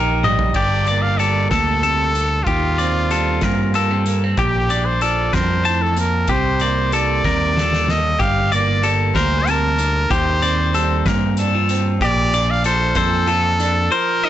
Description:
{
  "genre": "math rock and midwest emo",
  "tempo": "63 BPM (dotted quarters)",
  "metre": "6/8",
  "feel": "straight",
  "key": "Bb major",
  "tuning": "A4 = 441 Hz",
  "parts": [
    { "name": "electric guitar through a small old amp", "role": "accompaniment", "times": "0.0-14.3 s", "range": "G2 to G4", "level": "-24 LUFS", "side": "right 9 dB", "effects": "none" },
    { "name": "clean electric guitar", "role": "arpeggios", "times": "0.0-14.3 s", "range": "G4 to A5", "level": "-21 LUFS", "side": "left 5 dB", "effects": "none" },
    { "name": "fingered electric bass", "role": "bass", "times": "0.0-13.9 s", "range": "G1 to G2", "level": "-20 LUFS", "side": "equal", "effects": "none" },
    { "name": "loose indie drum kit", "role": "drums", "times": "0.2-13.8 s", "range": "crash cymbal, hi-hat, kick drum, snare drum, toms", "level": "-26 LUFS", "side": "equal", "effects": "none" },
    { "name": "brilliant trumpet", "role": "melody", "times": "0.6-14.3 s", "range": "F4 to F5", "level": "-21 LUFS", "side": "equal", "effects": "digital delay" }
  ],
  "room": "light reverb",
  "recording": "blown-out, overdriven recording, overdrive, nothing above 7.9 kHz",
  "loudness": "-15 LUFS",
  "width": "side -12 dB against mid",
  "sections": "0.6-14.3 A section",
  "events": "drum fill 0.2-0.6, 7.2-8.2",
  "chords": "0.0 Eb; 0.6 Gmadd9; 2.5 Eb69; 4.4 Bb6; 6.3 Cm7; 8.2 Gmadd9; 10.1 Eb69; 12.0 Bb69"
}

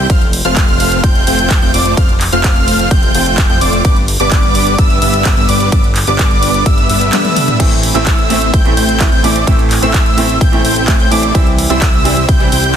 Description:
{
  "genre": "EDM, festival progressive house",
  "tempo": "128 BPM",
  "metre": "4/4",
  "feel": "straight",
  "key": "A minor",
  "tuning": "A4 = 440 Hz",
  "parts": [
    { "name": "wide unison lead", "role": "arpeggios", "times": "0.0-12.8 s", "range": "D6 to G6", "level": "-17 LUFS", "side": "equal", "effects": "sidechain pumping, ping-pong delay" },
    { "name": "dense compressed supersaw", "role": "riff", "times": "0.0-12.8 s", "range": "G3 to G5", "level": "-16 LUFS", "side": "equal", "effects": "sidechain pumping, ping-pong delay" },
    { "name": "fat analog bass", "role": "bass", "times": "0.0-12.8 s", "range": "F1 to F2", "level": "-18 LUFS", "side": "equal", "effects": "tube saturation, sidechain pumping" },
    { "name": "big-room dance drum kit", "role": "drums", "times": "0.1-12.7 s", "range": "crash cymbal, handclaps, hi-hat, ride cymbal, toms", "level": "-18 LUFS", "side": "equal", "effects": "studio reverb" },
    { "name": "electronic kick drum", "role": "drums", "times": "0.1-12.4 s", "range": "none", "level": "-12 LUFS", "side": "equal", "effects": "studio reverb" },
    { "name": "swell", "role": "sound effects", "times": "7.0-7.6 s", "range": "none", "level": "-26 LUFS", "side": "left 5 dB", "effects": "none" },
    { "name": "clear baby grand piano", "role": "accompaniment", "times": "7.6-12.5 s", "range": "A2 to E4", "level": "-18 LUFS", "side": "right 4 dB", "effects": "sidechain pumping, ping-pong delay" }
  ],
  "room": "little or no reverb",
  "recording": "dense, heavily limited modern master",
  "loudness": "-9 LUFS",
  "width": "side -9 dB against mid",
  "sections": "0.0-12.8 A section",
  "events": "swell 7.0-7.6; drum fill 7.1-7.6",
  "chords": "0.1 F; 3.8 G; 7.6 Am; 11.3 C"
}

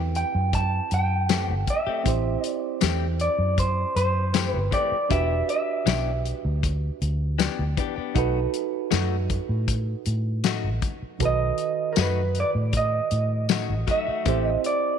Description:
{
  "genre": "straight-eighth soul blues",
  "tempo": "79 BPM",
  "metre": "4/4",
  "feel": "straight",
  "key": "unclear",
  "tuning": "A4 = 440 Hz",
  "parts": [
    { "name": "electric guitar through a small old amp", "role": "melody", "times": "0.0-6.2, 11.3-15.0 s", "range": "A#4 to A5", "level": "-26 LUFS", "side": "right 2 dB", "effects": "spring reverb" },
    { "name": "mellow reed electric piano", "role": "accompaniment", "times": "0.0-15.0 s", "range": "D#3 to C5", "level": "-32 LUFS", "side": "right 14 dB", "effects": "none" },
    { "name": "vintage muted fingered electric bass", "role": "bass", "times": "0.0-14.6 s", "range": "E1 to A2", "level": "-25 LUFS", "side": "equal", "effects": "none" },
    { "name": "warm soul drum kit", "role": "drums", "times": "0.2-14.8 s", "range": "hi-hat, kick drum, snare drum, tambourine", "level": "-26 LUFS", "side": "left 4 dB", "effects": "none" },
    { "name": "direct-recorded clean electric guitar", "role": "stabs", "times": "1.3-14.5 s", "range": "E3 to G4", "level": "-32 LUFS", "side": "left 11 dB", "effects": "none" }
  ],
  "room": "light reverb, studio ambience",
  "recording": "1960s-style stereo with parts hard left and right",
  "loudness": "-22 LUFS",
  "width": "side -8 dB against mid",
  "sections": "0.0-15.0 A section",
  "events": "none",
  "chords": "0.0 Am7; 5.1 Em7; 8.2 B7; 14.3 Am7"
}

